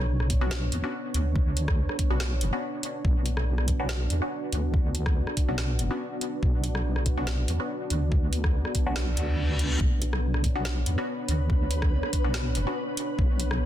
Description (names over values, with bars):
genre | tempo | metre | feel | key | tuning
deep dubstep | 142 BPM | 4/4 | swing 54% on 16ths, half-time | B minor | A4 = 441 Hz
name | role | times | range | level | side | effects
dark analog pad | sustained chords | 0.0-13.7 s | B3 to C#5 | -34 LUFS | equal | chorus
deep soft wobble bass | bass | 0.0-13.7 s | F#1 to E2 | -26 LUFS | equal | chorus
garage drum kit | drums | 0.2-13.6 s | hi-hat, rim click, snare drum | -33 LUFS | equal | none
electronic kick drum | drums | 0.3-13.3 s | none | -25 LUFS | equal | none
filtered dub chord stab | stabs | 0.4-12.8 s | B3 to F#4 | -35 LUFS | left 1 dB | phaser, dub echo
reverse cymbal | sound effects | 9.1-9.8 s | none | -34 LUFS | left 2 dB | none
flickering grainy texture | texture | 10.6-13.7 s | B3 to B4 | -37 LUFS | left 2 dB | built-in reverb
room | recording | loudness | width
little or no reverb | dense, heavily limited modern master | -24 LUFS | side -12 dB against mid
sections
0.0-13.7 A section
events
reverse cymbal 9.1-9.8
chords
0.0 Bmadd9